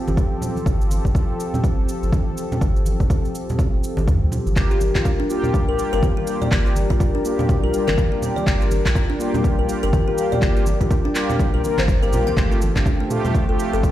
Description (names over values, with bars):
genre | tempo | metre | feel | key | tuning
afro house | 123 BPM | 4/4 | swing 60% on 16ths | G minor | A4 = 440 Hz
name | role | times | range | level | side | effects
warm analog pad | sustained chords | 0.0-13.9 s | F3 to Bb4 | -27 LUFS | left 2 dB | chorus, tremolo, sidechain pumping
warm sub bass | bass | 0.1-13.8 s | G1 to G2 | -22 LUFS | equal | sidechain pumping
afro-pop drum kit | drums | 0.1-13.9 s | cabasa, handclaps, toms | -30 LUFS | equal | none
congas | percussion | 0.1-13.9 s | none | -27 LUFS | right 1 dB | none
electronic kick drum | drums | 0.2-13.9 s | none | -19 LUFS | equal | none
mellow synth brass | stabs | 4.6-13.9 s | A3 to Bb4 | -26 LUFS | right 1 dB | chorus, sidechain pumping, dub echo
kalimba | arpeggios | 4.7-13.8 s | A3 to G5 | -25 LUFS | left 2 dB | sidechain pumping, dub echo
room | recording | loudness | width
light reverb, digital ambience | played on a big sound system in a bare room, stone room reverb | -17 LUFS | side -13 dB against mid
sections
0.0-13.9 A section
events
none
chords
0.0 Fadd9/G; 4.6 Gm7; 12.4 Fadd9/G